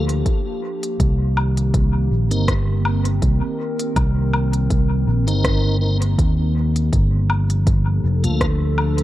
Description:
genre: ambient dub.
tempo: 81 BPM.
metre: 4/4.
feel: swing 54% on 16ths.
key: unclear.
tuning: A4 = 441 Hz.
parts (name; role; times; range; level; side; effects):
warbly tape-like pad; sustained chords; 0.0-9.0 s; Eb3 to Bb4; -26 LUFS; right 1 dB; chorus, built-in reverb.
tonewheel organ; stabs; 0.0-8.5 s; Bb3 to Bb4; -29 LUFS; left 1 dB; chorus vibrato, low-pass filter, dub echo.
fingered electric bass; bass; 0.0-9.0 s; F1 to Eb2; -18 LUFS; equal; none.
organic electronic drum kit; drums; 0.1-9.0 s; hi-hat, rim click, woodblock; -27 LUFS; left 2 dB; dub echo.
electronic kick drum; drums; 0.3-8.6 s; none; -20 LUFS; equal; none.
room: digital ambience.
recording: dark, warm production.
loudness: -16 LUFS.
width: side -15 dB against mid.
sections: 0.0-9.0 A section.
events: filter sweep on tonewheel organ 0.0-9.0.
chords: 0.0 Gm9; 1.0 Cm7; 6.9 Gm9.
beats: 0.26 | 1.00 1.74 2.48 3.22 | 3.96 4.71 5.45 6.19 | 6.93 7.67 8.41.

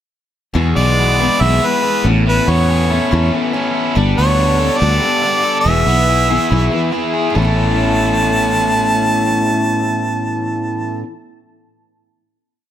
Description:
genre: folk rock and heartland rock.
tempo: 142 BPM.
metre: 4/4.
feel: straight.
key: A major.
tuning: A4 = 439 Hz.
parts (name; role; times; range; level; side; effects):
picked steel-string acoustic guitar; accompaniment; 0.5-11.1 s; E2 to A4; -20 LUFS; left 5 dB; none.
fingered electric bass; bass; 0.5-11.0 s; E1 to E2; -16 LUFS; right 1 dB; none.
biting overdriven guitar; riff; 0.6-11.1 s; E2 to A4; -19 LUFS; right 2 dB; none.
clear harmonica; melody; 0.8-11.0 s; B4 to A5; -17 LUFS; equal; none.
room: light reverb, studio reverb.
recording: none.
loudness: -13 LUFS.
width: side -10 dB against mid.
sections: 0.6-7.3 verse; 7.3-10.7 final chord.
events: none.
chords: 0.6 E; 2.1 Aadd9; 4.0 Gadd9; 5.7 E; 7.3 Aadd9.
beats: | 0.57 1.00 1.42 1.85 | 2.27 2.70 3.12 3.55 | 3.97 4.39 4.82 5.24 | 5.66 6.08 6.50 6.92 | 7.35 7.77 8.19 8.62 | 9.04 9.46 9.89 10.31.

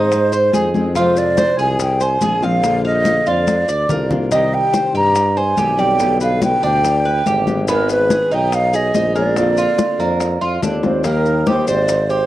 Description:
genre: latin, Cuban son and guajira.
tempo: 143 BPM.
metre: 4/4.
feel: straight.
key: unclear.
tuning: A4 = 441 Hz.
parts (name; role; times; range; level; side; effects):
breathy mellow concert flute; melody; 0.0-12.3 s; Bb4 to Bb5; -17 LUFS; right 2 dB; cassette tape.
nylon-string guitar; accompaniment; 0.0-11.9 s; B2 to Ab4; -22 LUFS; left 4 dB; cassette tape.
Cuban tres; arpeggios; 0.0-12.3 s; Bb3 to F5; -22 LUFS; right 2 dB; cassette tape.
warm tuba; bass; 0.0-12.3 s; Ab1 to Ab2; -20 LUFS; equal; none.
bongos; percussion; 0.1-12.1 s; none; -30 LUFS; left 6 dB; none.
congas; percussion; 0.1-12.3 s; none; -23 LUFS; left 3 dB; none.
maracas; percussion; 0.1-12.3 s; none; -32 LUFS; left 6 dB; none.
room: light reverb.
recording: home recording on cassette.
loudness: -14 LUFS.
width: side -14 dB against mid.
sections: 0.0-11.0 A section; 11.0-12.3 B section.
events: drum fill 3.5-4.3, 10.8.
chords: 0.0 Ab; 1.0 Fm; 2.6 Bb; 4.3 Cm; 6.0 G/B; 7.7 Abm; 9.4 Bbadd9; 11.0 Abmaj7.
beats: 0.12 0.54 | 0.96 1.38 1.80 2.22 | 2.64 3.06 3.48 3.90 | 4.32 4.74 5.16 5.58 | 6.00 6.42 6.84 7.26 | 7.68 8.10 8.52 8.94 | 9.36 9.78 10.20 10.62 | 11.04 11.46 11.88.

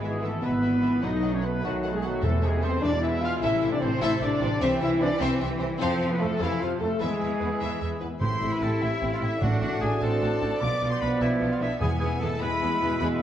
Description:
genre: cinematic, heroic adventure film score.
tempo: 100 BPM (dotted quarters).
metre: 6/8.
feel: straight.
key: A harmonic minor.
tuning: A4 = 440 Hz.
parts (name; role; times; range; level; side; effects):
rich symphonic violin section; melody; 0.0-13.1 s; B4 to D6; -38 LUFS; left 3 dB; none.
rich studio violin section; second line; 0.0-13.1 s; D4 to E5; -38 LUFS; left 2 dB; none.
rich symphonic viola section; accompaniment; 0.0-13.1 s; E3 to F4; -36 LUFS; right 1 dB; none.
clear trombone section; sustained chords; 0.0-13.2 s; A2 to C4; -36 LUFS; right 2 dB; none.
mellow French horn section; sustained chords; 0.0-13.2 s; E3 to G4; -29 LUFS; left 2 dB; none.
concert harp; arpeggios; 0.0-13.2 s; E2 to E6; -36 LUFS; left 7 dB; none.
clear trumpet section; stabs; 0.0-13.2 s; E4 to F5; -33 LUFS; right 2 dB; none.
clear symphonic cello section; bass; 0.0-13.2 s; B2 to E4; -33 LUFS; right 2 dB; none.
clear symphonic double bass section; bass; 0.0-13.1 s; G#1 to F2; -31 LUFS; right 2 dB; none.
timpani; percussion; 2.2-2.8, 8.2-12.4 s; E2 to A2; -30 LUFS; equal; none.
silver concert flute; second line; 8.2-13.1 s; E5 to D6; -34 LUFS; left 3 dB; none.
warm oboe; second line; 8.2-13.2 s; E4 to D5; -33 LUFS; right 1 dB; none.
room: moderate recital hall reverb, RT60 1.5 s.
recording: worn, warbling old tape, cassette tape, warbly pitch drift.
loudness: -23 LUFS.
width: side -10 dB against mid.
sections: 0.0-8.2 A section; 8.2-13.2 B section.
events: none.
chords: 0.0 E/G#; 1.0 B7; 2.2 Am/E; 2.8 E; 3.4 Am; 4.6 C; 5.8 F; 7.0 E; 8.2 Am7; 9.4 D/A; 10.6 Bdim; 11.8 E.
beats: 0.43 | 1.03 1.63 | 2.23 2.82 | 3.42 4.02 | 4.61 5.21 | 5.80 6.40 | 7.01 7.61 | 8.22 8.82 | 9.42 10.02 | 10.62 11.21 | 11.81 12.40 | 13.00.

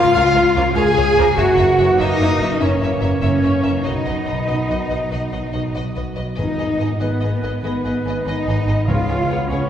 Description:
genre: cinematic.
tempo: 97 BPM (dotted quarters).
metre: 12/8.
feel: straight.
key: unclear.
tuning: A4 = 440 Hz.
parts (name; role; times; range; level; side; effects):
large flute ensemble; second line; 0.0-9.7 s; Cb5 to Ab5; -28 LUFS; left 1 dB; none.
warm clarinet; second line; 0.0-9.7 s; Cb5 to Ab5; -29 LUFS; left 2 dB; none.
warm symphonic violin section; second line; 0.0-9.6 s; Gb4 to Db5; -32 LUFS; left 2 dB; none.
warm symphonic viola section; accompaniment; 0.0-9.7 s; Cb4 to Ab4; -27 LUFS; equal; none.
dark French horn section; sustained chords; 0.0-9.7 s; Cb4 to Ab4; -22 LUFS; left 1 dB; none.
concert harp; arpeggios; 0.0-9.7 s; Gb2 to Db5; -29 LUFS; left 2 dB; none.
warm trumpet section; stabs; 0.0-9.7 s; Cb5 to Ab5; -26 LUFS; left 2 dB; none.
warm symphonic cello section; bass; 0.0-9.7 s; Cb4 to Ab4; -23 LUFS; right 1 dB; none.
rich symphonic violin section; melody; 0.1-9.6 s; Db5 to F5; -31 LUFS; left 3 dB; none.
rich symphonic double bass section; bass; 0.1-9.6 s; Gb1 to Db2; -22 LUFS; right 1 dB; none.
clear trombone section; sustained chords; 0.6-9.7 s; Db3 to Cb4; -29 LUFS; right 2 dB; none.
timpani; percussion; 6.4-9.4 s; Ab2 to Db3; -27 LUFS; equal; none.
room: wet scoring stage reverb, RT60 2.0 s.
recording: heard from further back in the room.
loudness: -16 LUFS.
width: side -9 dB against mid.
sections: 0.0-9.7 A section.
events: none.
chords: 0.0 Bbm/Db; 1.4 Gb7; 3.8 Cb; 6.4 Abm; 8.9 Db7.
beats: 0.14 0.76 | 1.37 1.99 2.60 3.22 | 3.85 4.48 5.11 5.75 | 6.38 7.01 7.63 8.25 | 8.87 9.48.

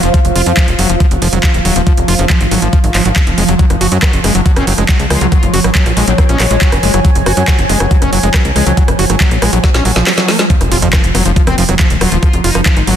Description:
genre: psychedelic trance.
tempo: 139 BPM.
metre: 4/4.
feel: straight.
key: F phrygian.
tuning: A4 = 440 Hz.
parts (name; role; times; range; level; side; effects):
swarming drone; sustained chords; 0.0-13.0 s; F3; -20 LUFS; right 3 dB; built-in reverb, sidechain pumping.
screaming distorted acid line; riff; 0.0-13.0 s; F3 to Gb4; -17 LUFS; moving between left 4 dB and right 3 dB; distortion, chorus, auto-pan, sidechain pumping, dub echo.
tight sequencer bass; bass; 0.0-12.9 s; Eb1 to Gb2; -14 LUFS; equal; none.
garage drum kit; drums; 0.0-13.0 s; handclaps, hi-hat, rim click, snare drum; -16 LUFS; right 1 dB; overdrive, studio reverb.
deep dark ambient pad; texture; 0.0-10.5 s; F4 to Ab5; -20 LUFS; left 1 dB; chorus, built-in reverb, sidechain pumping.
electronic kick drum; drums; 0.1-12.7 s; none; -11 LUFS; equal; overdrive, studio reverb.
metallic wobble bass; second line; 4.6-6.6, 11.5-12.9 s; Ab3 to F4; -24 LUFS; left 5 dB; wide subtle chorus, sidechain pumping, high-pass filter, tape echo.
impact; sound effects; 10.5-12.2 s; none; -22 LUFS; equal; none.
room: light reverb.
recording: dense, heavily limited modern master.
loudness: -9 LUFS.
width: side -9 dB against mid.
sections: 0.0-10.5 A section; 10.5-13.0 B section.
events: drum fill 9.6-10.5; drop 10.5-13.0; impact 10.5-12.2.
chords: 0.0 F5; 3.6 Gb5; 10.5 F5.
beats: | 0.14 0.57 1.00 1.44 | 1.87 2.30 2.73 3.16 | 3.59 4.03 4.46 4.89 | 5.32 5.75 6.18 6.62 | 7.05 7.48 7.91 8.34 | 8.77 9.21 9.64 10.07 | 10.50 10.93 11.36 11.79 | 12.23 12.66.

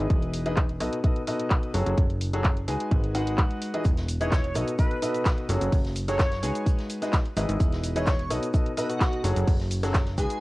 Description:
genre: piano house.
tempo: 128 BPM.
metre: 4/4.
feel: straight.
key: unclear.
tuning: A4 = 440 Hz.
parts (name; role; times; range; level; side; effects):
clear concert grand piano; riff; 0.0-10.4 s; B2 to G#5; -30 LUFS; left 1 dB; sidechain pumping, cassette tape.
plucky analog bass; bass; 0.0-10.3 s; E1 to C#2; -28 LUFS; equal; tube saturation, sidechain pumping.
electronic kick drum; drums; 0.1-10.3 s; none; -23 LUFS; equal; none.
house drum kit; drums; 0.1-10.4 s; handclaps, hi-hat, rim click, shaker; -32 LUFS; equal; none.
unplugged drum kit; drums; 3.8-10.3 s; hi-hat, shaker, snare drum; -43 LUFS; equal; high-pass filter on hats, high-pass filter on snare, high-pass filter on perc, high-pass filter on room.
airy dreamy lead; melody; 4.2-10.4 s; F#4 to C#5; -33 LUFS; right 1 dB; chorus, cassette tape, tape echo.
room: light reverb.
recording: home recording on cassette.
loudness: -23 LUFS.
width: side -20 dB against mid.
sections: 0.0-10.4 A section.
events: none.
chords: 0.1 Emaj7; 0.8 B7; 1.7 F#madd9; 2.9 G#m7; 3.9 Emaj7; 4.6 B7; 5.5 F#madd9; 6.7 G#m7; 7.6 Emaj7; 8.3 B7; 9.2 F#madd9.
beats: | 0.10 0.57 1.04 1.51 | 1.98 2.44 2.91 3.38 | 3.85 4.32 4.79 5.26 | 5.73 6.20 6.66 7.13 | 7.60 8.07 8.54 9.01 | 9.48 9.95.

